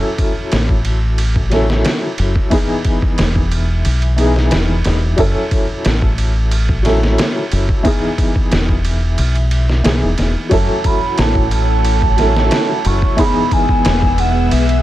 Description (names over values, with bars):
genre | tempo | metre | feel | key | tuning
trip hop | 90 BPM | 4/4 | straight | F# dorian | A4 = 440 Hz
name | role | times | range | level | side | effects
felt-muted upright piano | accompaniment | 0.0-14.8 s | E3 to A4 | -20 LUFS | equal | tremolo, tape echo
trip hop sampler-style drum kit | drums | 0.2-14.8 s | kick drum, ride cymbal, snare drum | -17 LUFS | equal | overdrive
deep dub fingered electric bass | bass | 0.5-14.8 s | E1 to B1 | -15 LUFS | equal | none
mellow hollow baroque flute | melody | 10.5-14.8 s | E5 to C#6 | -19 LUFS | right 3 dB | tape echo
string machine, cellos | sustained chords | 10.5-14.8 s | B3 to E6 | -21 LUFS | left 1 dB | ensemble chorus
room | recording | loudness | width
small room ambience | none | -12 LUFS | side -14 dB against mid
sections
0.0-14.8 A section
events
none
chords
0.0 F#m7; 2.5 Emaj7; 5.2 F#m7; 7.8 Emaj7; 10.5 F#m7; 13.2 Emaj7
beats
0.52 1.18 1.85 | 2.52 3.18 3.85 4.52 | 5.18 5.85 6.52 7.18 | 7.85 8.52 9.18 9.85 | 10.52 11.18 11.85 12.52 | 13.18 13.85 14.52